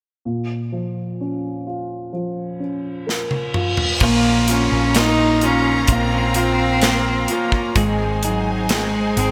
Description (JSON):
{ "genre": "pop ballad", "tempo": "64 BPM", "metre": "4/4", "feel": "straight", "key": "Bb minor", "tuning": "A4 = 444 Hz", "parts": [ { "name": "dark concert grand piano", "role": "accompaniment", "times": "0.3-9.3 s", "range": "Bb2 to Bb4", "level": "-26 LUFS", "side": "equal", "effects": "lush chorus" }, { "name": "reverse cymbal and downlifter", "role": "sound effects", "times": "3.2-9.3 s", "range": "none", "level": "-30 LUFS", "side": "equal", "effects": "none" }, { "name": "modern studio drum kit", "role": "drums", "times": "3.1-9.3 s", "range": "crash cymbal, hi-hat, kick drum, snare drum, toms", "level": "-24 LUFS", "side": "equal", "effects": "gated reverb" }, { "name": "warm cello", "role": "melody", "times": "4.0-9.3 s", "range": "Gb3 to Eb4", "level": "-22 LUFS", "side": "equal", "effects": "none" }, { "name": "clear studio string section", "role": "sustained chords", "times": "4.0-9.3 s", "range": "Eb4 to Bb5", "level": "-28 LUFS", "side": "equal", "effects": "none" }, { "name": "direct-recorded clean electric guitar", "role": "arpeggios", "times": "4.0-9.3 s", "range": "Ab2 to Ab4", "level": "-28 LUFS", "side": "equal", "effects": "lush chorus" }, { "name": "hollow-body short-scale fingered electric bass", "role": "bass", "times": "4.0-9.3 s", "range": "Ab1 to Bb1", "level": "-25 LUFS", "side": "equal", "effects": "none" } ], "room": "moderate lush hall reverb, RT60 2.8 s", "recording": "bright 1980s-style digital production", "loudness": "-19 LUFS", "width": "mono", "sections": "0.3-4.0 A section; 4.0-9.3 B section", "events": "drum fill 3.1-4.0; reverse cymbal 3.2-4.0", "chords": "0.3 Bbm; 7.8 Ab", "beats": "| 0.26 1.20 2.13 3.07 | 4.01 4.95 5.88 6.82 | 7.76 8.70" }